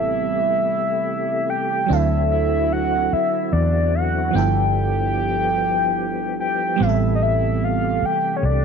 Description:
slow six-eight R&B; 49 BPM (dotted quarters); 6/8; straight; A minor; A4 = 441 Hz
soft octave-layered synth lead; melody; 0.0-8.6 s; C#5 to G5; -21 LUFS; left 1 dB; chorus, phaser, slapback echo
FM electric piano; accompaniment; 0.0-8.6 s; E3 to A4; -24 LUFS; right 16 dB; chorus, phaser
tonewheel organ; sustained chords; 0.0-8.6 s; C3 to G4; -29 LUFS; left 14 dB; chorus vibrato, slow rotary speaker
vintage muted fingered electric bass; bass; 0.0-8.6 s; G1 to E2; -22 LUFS; left 1 dB
light reverb; 1960s-style stereo with parts hard left and right; -18 LUFS; side -6 dB against mid
0.0-8.6 A section
0.0 Am9; 1.9 D9; 4.3 G13; 6.8 Am9

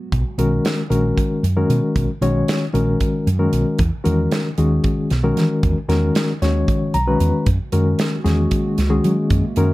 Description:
electric jazz fusion; 228 BPM (eighths); 7/8; straight; A4 = 439 Hz
dark analog pad; sustained chords; 0.0-0.1, 8.1-9.7 s; G#3 to E5; -28 LUFS; right 2 dB; chorus
woody fretless electric bass; bass; 0.1-9.7 s; A#1 to F#3; -18 LUFS; right 1 dB
modern studio drum kit; drums; 0.1-9.7 s; hi-hat, kick drum, snare drum; -23 LUFS; right 1 dB
mellow reed electric piano; accompaniment; 0.4-9.7 s; D#3 to A#5; -19 LUFS; left 2 dB; fast tremolo
moderate club reverb, RT60 0.5 s; -16 LUFS; side -19 dB against mid
0.1-9.7 A section
reed electric piano fill 6.7-7.5
0.1 Bmaj9; 3.8 Emaj9#11; 7.5 F#9

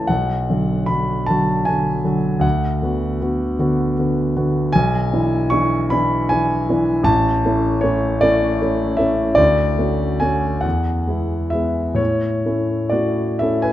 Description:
classical, romantic nocturne for solo piano; 42-53 BPM (dotted quarters); 6/8; rubato; A major; A4 = 442 Hz
dark concert grand piano; solo; 0.0-13.7 s; A1 to C#6; -16 LUFS; equal
moderate scoring stage reverb, RT60 1.9 s; -16 LUFS; side -13 dB against mid
0.0-13.7 A section
0.1 Bm; 2.4 Bm/D; 4.7 E7/B; 7.1 A; 9.4 Dmaj7; 10.6 E; 12.0 A

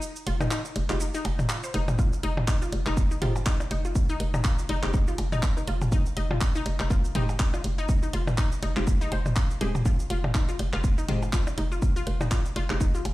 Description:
minimal techno; 122 BPM; 4/4; swing 57% on 16ths; F minor; A4 = 441 Hz
house drum kit; drums; 0.0-13.1 s; handclaps, hi-hat, shaker; -35 LUFS; right 1 dB
resonant blip pluck; riff; 0.3-13.0 s; Eb4 to C5; -34 LUFS; left 2 dB; chorus, sidechain pumping, dub echo
hollow knocking FM bass; bass; 0.3-13.1 s; Eb1 to F1; -29 LUFS; equal; sidechain pumping
electronic toms and percussion blips; percussion; 0.4-13.1 s; -31 LUFS; equal
filtered dub chord stab; stabs; 0.9-12.8 s; Ab3 to G4; -35 LUFS; left 1 dB; phaser, ping-pong delay
electronic kick drum; drums; 2.0-12.9 s; -24 LUFS; equal
light reverb; played on a big sound system in a bare room, stone room reverb; -24 LUFS; side -17 dB against mid
0.0-13.1 A section
break 0.0-2.0
0.0 F7(no3)

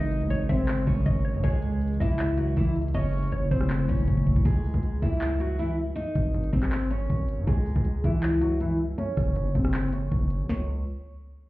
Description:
hip hop, trap; 159 BPM; 4/4; half-time; C# harmonic minor; A4 = 440 Hz
picked steel-string acoustic guitar; melody; 0.0-10.7 s; E3 to D#5; -29 LUFS; equal; low-pass filter
hollow square pluck; second line; 0.0-3.7 s; B#4 to E5; -38 LUFS; left 1 dB; chorus, digital delay
glassy FM pad; sustained chords; 0.0-4.4 s; C#3 to E4; -32 LUFS; equal; ensemble chorus, built-in reverb
distorted 808-style bass; bass; 0.0-10.8 s; F#1 to G#2; -27 LUFS; equal; distortion
trap drum kit; drums; 0.1-10.6 s; handclaps, hi-hat, kick drum, rim click, snare drum; -26 LUFS; equal
little or no reverb; heard muffled through a wall, club reverb, EQ; -23 LUFS; side -18 dB against mid
0.0-4.5 A section; 4.5-10.5 B section; 10.5-11.5 C section
drum fill 4.1-4.5; filter sweep on steel-string acoustic guitar 4.5-10.5
0.0 G#sus4; 1.4 C#m; 2.9 F#m7; 4.5 C#m; 6.0 G#sus4; 7.5 C#m; 9.0 F#5; 10.5 N.C.

